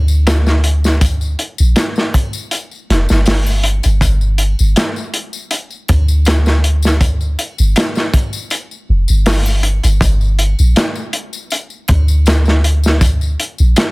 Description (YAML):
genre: trip hop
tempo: 80 BPM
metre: 4/4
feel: swing 53% on 16ths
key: G minor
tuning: A4 = 440 Hz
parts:
  - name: soft 808-style bass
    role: bass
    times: 0.0-13.7 s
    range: F1 to D2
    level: -12 LUFS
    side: equal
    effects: none
  - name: tambourine and triangle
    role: percussion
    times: 0.1-13.9 s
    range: none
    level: -28 LUFS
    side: left 6 dB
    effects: none
  - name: crunchy breakbeat drum kit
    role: drums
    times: 0.3-13.9 s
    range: hi-hat, kick drum, snare drum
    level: -15 LUFS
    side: equal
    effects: none
room: small room ambience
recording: none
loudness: -12 LUFS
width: side -26 dB against mid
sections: 0.0-13.9 A section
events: none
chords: none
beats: 0.26 | 1.01 1.76 2.51 3.26 | 4.01 4.76 5.51 6.26 | 7.01 7.76 8.51 9.26 | 10.01 10.76 11.51 12.26 | 13.01 13.76